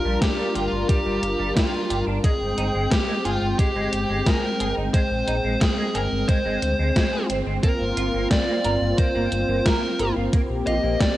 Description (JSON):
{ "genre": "synthwave", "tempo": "89 BPM", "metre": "4/4", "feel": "straight", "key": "unclear", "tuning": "A4 = 440 Hz", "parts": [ { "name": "dark smooth lead guitar", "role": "melody", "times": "0.0-11.2 s", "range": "F4 to Eb5", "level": "-26 LUFS", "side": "equal", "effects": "overdrive, cassette tape, analog delay" }, { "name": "brassy analog pad", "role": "sustained chords", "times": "0.0-11.2 s", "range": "G3 to G5", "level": "-26 LUFS", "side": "equal", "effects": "chorus, sidechain pumping, cassette tape" }, { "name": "dark detuned saw bass", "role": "bass", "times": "0.0-11.0 s", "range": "G1 to D2", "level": "-27 LUFS", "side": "equal", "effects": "sidechain pumping" }, { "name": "semi-hollow electric guitar", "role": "riff", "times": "0.1-10.9 s", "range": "G3 to Bb4", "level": "-31 LUFS", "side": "right 2 dB", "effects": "analog chorus, cassette tape, tape echo" }, { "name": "electronic kick drum", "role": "drums", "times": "0.2-11.1 s", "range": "none", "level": "-21 LUFS", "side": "equal", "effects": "overdrive, cassette tape" }, { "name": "gated 80s digital drum machine", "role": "drums", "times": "0.2-11.1 s", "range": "hi-hat, snare drum", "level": "-27 LUFS", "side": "equal", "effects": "gated reverb, gated reverb snare, overdrive, cassette tape" } ], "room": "light reverb, digital ambience", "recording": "home recording on cassette", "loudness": "-20 LUFS", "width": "side -15 dB against mid", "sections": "0.0-11.2 A section", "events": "none", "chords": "0.0 Gm7; 2.2 Abmaj7/G; 7.6 Bbsus2/G" }